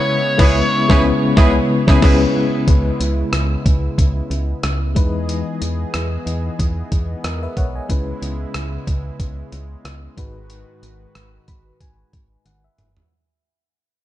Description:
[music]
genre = 1980s-style pop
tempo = 92 BPM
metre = 4/4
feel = swing 55% on 16ths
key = C# minor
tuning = A4 = 440 Hz
[part]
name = smooth overdriven lead guitar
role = melody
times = 0.0-1.0 s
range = C#5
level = -21 LUFS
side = equal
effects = tape echo
[part]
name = FM electric piano with tremolo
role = accompaniment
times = 0.0-13.1 s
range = G#2 to B5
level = -20 LUFS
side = left 3 dB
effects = none
[part]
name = brassy analog pad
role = sustained chords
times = 0.0-13.1 s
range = C#3 to D#5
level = -29 LUFS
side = equal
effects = chorus
[part]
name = warm horn section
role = stabs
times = 0.4-2.2 s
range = E4 to B4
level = -25 LUFS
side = right 4 dB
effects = tape echo
[part]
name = solid FM bass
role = bass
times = 0.4-13.0 s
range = F#1 to E2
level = -22 LUFS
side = equal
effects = none
[part]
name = dusty soul sampler-style drum kit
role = drums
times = 0.4-13.1 s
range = crash cymbal, hi-hat, kick drum, rim click, snare drum, toms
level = -17 LUFS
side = equal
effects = none
[sound]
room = light reverb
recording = dark, warm production, nothing above 10.3 kHz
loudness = -15 LUFS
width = side -13 dB against mid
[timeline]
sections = 0.0-2.7 A section; 2.7-13.1 B section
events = band accent 0.1-2.7; fade-out 2.7-13.1; FM electric piano fill 11.2-13.1; drum fill 12.5-13.1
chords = 0.0 C#m7; 5.0 Emaj7; 7.9 C#m7; 10.2 G#m7

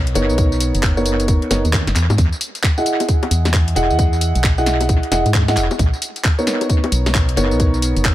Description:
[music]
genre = UK garage, two-step garage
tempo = 133 BPM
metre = 4/4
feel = swing 63% on 16ths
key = B major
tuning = A4 = 440 Hz
[part]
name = dark grand piano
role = stabs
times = 0.0-8.1 s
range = B3 to F#5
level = -20 LUFS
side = right 1 dB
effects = dub echo
[part]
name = organ-like FM bass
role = bass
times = 0.0-8.1 s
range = E1 to G#2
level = -18 LUFS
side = equal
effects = none
[part]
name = garage drum kit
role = drums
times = 0.1-8.1 s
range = bongos, handclaps, hi-hat, snare drum, tambourine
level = -22 LUFS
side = left 1 dB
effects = analog delay
[part]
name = electronic kick drum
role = drums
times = 0.4-8.1 s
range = none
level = -16 LUFS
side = equal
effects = none
[sound]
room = digital ambience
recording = echo-heavy mix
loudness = -14 LUFS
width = side -14 dB against mid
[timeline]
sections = 0.0-8.1 A section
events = none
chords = 0.0 Bmaj9; 2.0 Emaj9; 5.8 Bmaj9

